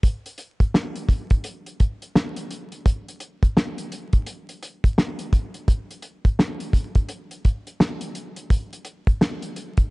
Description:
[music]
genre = hip hop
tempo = 85 BPM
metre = 4/4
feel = swing 62% on 16ths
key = none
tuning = none
[part]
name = cloth-damped thuddy drum kit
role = drums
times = 0.0-9.9 s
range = hi-hat, kick drum, snare drum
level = -20 LUFS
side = equal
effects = none
[sound]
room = light reverb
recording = dry, gritty hardware recording, vinyl crackle, nothing above 10.6 kHz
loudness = -21 LUFS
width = side -26 dB against mid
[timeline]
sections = 0.0-9.9 A section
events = none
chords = none

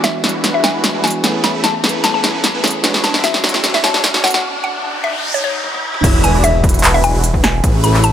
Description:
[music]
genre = future bass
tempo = 150 BPM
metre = 4/4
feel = half-time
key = unclear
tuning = A4 = 440 Hz
[part]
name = mallet-like synth pluck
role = melody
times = 0.0-8.1 s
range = C#5 to B5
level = -19 LUFS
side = left 2 dB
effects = chorus, phaser, sidechain pumping, tape echo
[part]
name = tine electric piano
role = accompaniment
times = 0.0-4.4 s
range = D3 to G#4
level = -25 LUFS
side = right 2 dB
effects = sidechain pumping, tape echo
[part]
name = supersaw chords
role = riff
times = 0.0-8.0 s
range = G#3 to E5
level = -21 LUFS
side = right 1 dB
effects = phaser, sidechain pumping, low-pass filter
[part]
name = big-room dance drum kit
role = drums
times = 0.0-8.1 s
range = crash cymbal, handclaps, hi-hat, snare drum, toms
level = -16 LUFS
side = equal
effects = none
[part]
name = riser, noise sweep and impact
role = sound effects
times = 0.0-7.6 s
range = none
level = -23 LUFS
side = equal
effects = none
[part]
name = fat analog bass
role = bass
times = 6.0-8.1 s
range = E1 to A1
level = -15 LUFS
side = equal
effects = sidechain pumping
[part]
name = electronic kick drum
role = drums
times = 6.0-7.7 s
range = none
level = -15 LUFS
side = equal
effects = none
[sound]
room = light reverb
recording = high-pass filter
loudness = -12 LUFS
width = side -10 dB against mid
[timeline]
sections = 0.0-6.0 A section; 6.0-8.1 B section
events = build-up 0.0-6.0; drum fill 0.0-4.4, 5.6-6.0; riser 0.0-6.0; filter sweep on supersaw synth 0.0-6.0; filter sweep on synth pluck 0.0-6.0; break 4.4-6.0; noise sweep 4.4-6.0; drop 6.0-8.1; impact 6.0-7.6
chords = 0.0 E9; 1.2 Amaj9; 2.8 Dmaj9#11; 4.2 Bm9; 6.0 E9

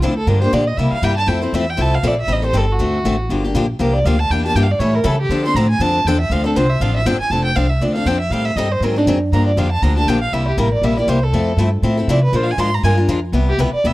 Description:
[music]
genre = acoustic string swing (jazz manouche)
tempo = 239 BPM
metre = 4/4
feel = swing 56% on 8ths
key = D minor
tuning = A4 = 440 Hz
[part]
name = warm violin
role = melody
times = 0.0-13.9 s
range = D4 to C6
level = -20 LUFS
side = right 1 dB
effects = slapback echo
[part]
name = picked steel-string acoustic guitar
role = accompaniment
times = 0.0-13.9 s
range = C3 to Bb4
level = -20 LUFS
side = left 3 dB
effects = none
[part]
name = upright bass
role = bass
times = 0.0-13.9 s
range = F1 to D3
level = -18 LUFS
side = equal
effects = none
[sound]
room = little or no reverb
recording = dry, close 1970s-style studio recording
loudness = -14 LUFS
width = side -18 dB against mid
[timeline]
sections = 0.0-7.3 A section; 7.3-13.9 A section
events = violin solo 0.0-13.9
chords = 0.3 Gm7; 0.8 C7; 1.3 Fmaj7; 2.3 Am7b5; 2.8 D7; 3.3 Gm7; 4.3 Em7b5; 4.8 A7; 5.3 Dm7; 7.3 F6; 8.3 Am7b5; 8.8 G#7; 9.3 Gm7; 10.3 C7; 11.3 Fmaj7; 12.3 Bb7; 13.3 Cmaj7

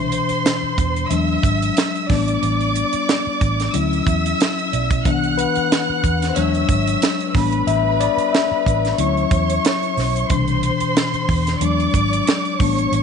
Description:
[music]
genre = lush 1970s-style soul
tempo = 91 BPM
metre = 4/4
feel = swing 54% on 16ths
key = D major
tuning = A4 = 436 Hz
[part]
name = warm symphonic violin section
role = second line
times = 0.0-13.0 s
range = B4 to F#6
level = -22 LUFS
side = right 3 dB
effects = none
[part]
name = mellow tine electric piano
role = accompaniment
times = 0.0-13.0 s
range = B2 to E5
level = -21 LUFS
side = left 10 dB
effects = medium stereo tremolo
[part]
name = vintage muted fingered electric bass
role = bass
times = 0.0-13.0 s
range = G#1 to E2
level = -22 LUFS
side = right 2 dB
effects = none
[part]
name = celesta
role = texture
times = 0.0-0.1, 4.7-9.3 s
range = D5 to E5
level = -34 LUFS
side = right 12 dB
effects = none
[part]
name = tight funk drum kit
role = drums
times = 0.1-13.0 s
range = hi-hat, kick drum, snare drum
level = -21 LUFS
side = right 3 dB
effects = none
[sound]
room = light reverb, small room ambience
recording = 1960s-style stereo with parts hard left and right, nothing above 10.4 kHz, faint mains hum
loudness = -16 LUFS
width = side -6 dB against mid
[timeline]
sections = 0.0-13.0 A section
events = tine electric piano solo 0.0-13.0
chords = 0.0 Cmaj7; 1.1 E7; 2.1 A9sus4; 3.7 Dmaj9; 5.1 Cmaj7; 6.4 E7; 7.4 A9sus4; 9.0 Dmaj9; 10.3 Cmaj7; 11.6 E7

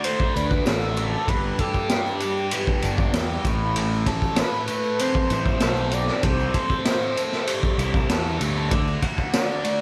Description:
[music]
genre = psychedelic rock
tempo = 97 BPM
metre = 4/4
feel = straight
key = A dorian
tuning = A4 = 438 Hz
[part]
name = overdriven synth lead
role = melody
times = 0.0-9.8 s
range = G4 to D5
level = -30 LUFS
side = equal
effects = distortion, chorus, phaser, tape echo
[part]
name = biting overdriven guitar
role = riff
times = 0.0-9.8 s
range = G2 to A4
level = -29 LUFS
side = equal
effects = phaser
[part]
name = raw garage drum kit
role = drums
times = 0.0-9.8 s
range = kick drum, ride cymbal, snare drum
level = -27 LUFS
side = equal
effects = none
[part]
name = tambourine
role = percussion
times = 0.0-9.8 s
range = none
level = -48 LUFS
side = equal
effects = none
[part]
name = fuzz picked electric bass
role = bass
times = 0.4-9.0 s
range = G1 to E2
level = -28 LUFS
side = equal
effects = overdrive
[sound]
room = light reverb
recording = none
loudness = -23 LUFS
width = mono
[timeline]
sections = 0.0-9.8 A section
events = none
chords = 0.0 D; 1.3 G; 3.5 Am; 6.2 C6; 8.7 D

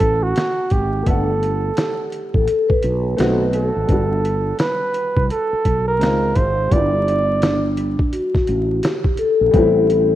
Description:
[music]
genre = hip hop, jazz-hop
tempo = 85 BPM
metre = 4/4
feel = swing 62% on 16ths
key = unclear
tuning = A4 = 440 Hz
[part]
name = trumpet with bucket mute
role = melody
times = 0.0-7.8 s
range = F#4 to D5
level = -20 LUFS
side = right 3 dB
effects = none
[part]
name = dark grand piano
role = accompaniment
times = 0.0-10.2 s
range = G3 to F#5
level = -25 LUFS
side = left 1 dB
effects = none
[part]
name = fretless electric bass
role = bass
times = 0.0-10.2 s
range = G1 to C#2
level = -21 LUFS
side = equal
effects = lush chorus
[part]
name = trip hop sampler-style drum kit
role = drums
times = 0.0-10.1 s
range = hi-hat, kick drum, snare drum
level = -20 LUFS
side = equal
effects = none
[part]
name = vibraphone with soft mallets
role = second line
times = 1.8-10.2 s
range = D4 to B4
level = -18 LUFS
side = left 4 dB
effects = slapback echo
[sound]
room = moderate lush hall reverb, RT60 2.2 s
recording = rough home demo mix, vinyl crackle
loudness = -16 LUFS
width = side -13 dB against mid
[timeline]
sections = 0.0-10.2 A section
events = none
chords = 0.0 Am7; 1.1 Gmaj9; 3.2 B7b9; 3.9 Gmaj9; 6.0 C#maj9; 6.7 Gmaj13; 9.5 Am7

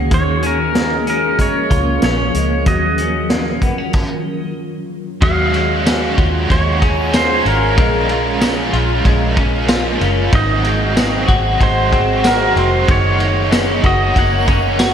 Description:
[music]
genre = dream pop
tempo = 94 BPM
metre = 4/4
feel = straight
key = Eb minor, Eb dorian from 5.2 s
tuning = A4 = 443 Hz
[part]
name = granular cloud pad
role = sustained chords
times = 0.0-14.9 s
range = F3 to Db6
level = -23 LUFS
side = equal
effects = built-in reverb
[part]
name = semi-hollow electric guitar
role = arpeggios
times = 0.0-14.9 s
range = Eb3 to Gb4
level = -20 LUFS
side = left 2 dB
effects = analog chorus, ping-pong delay, slapback echo
[part]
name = vintage muted fingered electric bass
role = bass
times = 0.0-14.9 s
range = F1 to Eb2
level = -19 LUFS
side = equal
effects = none
[part]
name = pedal steel guitar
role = melody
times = 0.1-14.9 s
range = Bb4 to Gb5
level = -20 LUFS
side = right 2 dB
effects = ping-pong delay, slapback echo
[part]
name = vintage drum kit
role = drums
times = 0.1-14.9 s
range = crash cymbal, hi-hat, kick drum, ride cymbal, snare drum, tambourine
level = -18 LUFS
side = equal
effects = none
[part]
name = biting overdriven guitar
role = accompaniment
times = 5.2-14.9 s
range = Ab2 to Db5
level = -20 LUFS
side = right 2 dB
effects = tremolo, analog chorus, slapback echo
[part]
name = backwards swelling texture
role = texture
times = 6.3-7.3, 14.1-14.9 s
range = Ab5 to Db6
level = -30 LUFS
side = right 1 dB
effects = none
[sound]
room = wet lush hall reverb, RT60 2.0 s, studio reverb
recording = big arena sound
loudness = -13 LUFS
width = side -8 dB against mid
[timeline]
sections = 0.0-5.2 A section; 5.2-14.9 B section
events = stop 3.9-5.2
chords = 0.1 Bbm7/Eb; 2.7 Ebm9; 5.2 Ebm11; 7.8 Bbm7; 10.3 Ab7; 12.9 Gb6

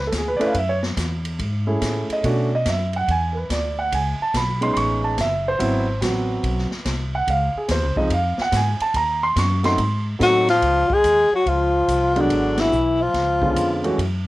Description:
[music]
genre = jazz, small-group swing and bop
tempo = 143 BPM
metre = 4/4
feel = swing 66% on 8ths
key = unclear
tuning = A4 = 441 Hz
[part]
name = dark concert grand piano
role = accompaniment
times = 0.0-14.0 s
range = D3 to C#6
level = -22 LUFS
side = right 2 dB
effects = none
[part]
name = upright bass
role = bass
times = 0.0-14.3 s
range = Gb1 to Cb3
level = -24 LUFS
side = equal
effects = none
[part]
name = swinging big-band drum kit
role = drums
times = 0.1-14.1 s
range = hi-hat, kick drum, ride cymbal, snare drum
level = -29 LUFS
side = equal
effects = cassette tape
[part]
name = breathy alto saxophone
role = melody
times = 10.2-13.9 s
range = D4 to Ab4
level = -18 LUFS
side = left 2 dB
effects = cassette tape
[part]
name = bright trombone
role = second line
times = 10.2-13.8 s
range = D3 to Ab3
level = -26 LUFS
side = right 2 dB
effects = none
[sound]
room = light reverb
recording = home recording on cassette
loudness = -18 LUFS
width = side -17 dB against mid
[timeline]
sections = 0.0-10.6 A section; 10.6-14.3 B section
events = band accent 12.5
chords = 0.0 Db7b9b13; 0.6 Gbm9; 2.2 Cbm9; 3.1 D69; 3.9 Amaj9#11; 5.6 Ab7alt; 7.3 Dbmaj9; 9.0 Ebm; 9.8 Ab7b9; 10.6 Dbmaj9; 12.3 Abm7b5; 13.1 Db7b9

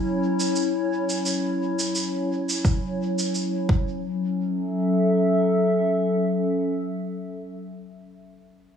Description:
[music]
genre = ambient dub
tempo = 86 BPM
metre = 4/4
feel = swing 54% on 16ths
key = F# minor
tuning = A4 = 440 Hz
[part]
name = warbly tape-like pad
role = sustained chords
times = 0.0-7.6 s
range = F#3 to E5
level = -23 LUFS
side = left 1 dB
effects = chorus, built-in reverb
[part]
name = cabasa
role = drums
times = 0.4-3.5 s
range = none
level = -29 LUFS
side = right 2 dB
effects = none
[part]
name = electronic kick drum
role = drums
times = 2.6-3.8 s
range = none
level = -22 LUFS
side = equal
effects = overdrive
[sound]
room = moderate lush hall reverb, RT60 2.0 s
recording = studio ambience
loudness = -21 LUFS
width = side -8 dB against mid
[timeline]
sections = 0.0-4.0 A section; 4.0-6.8 B section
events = none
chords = 0.0 C#m/F#; 3.7 F#5; 4.0 F#m7

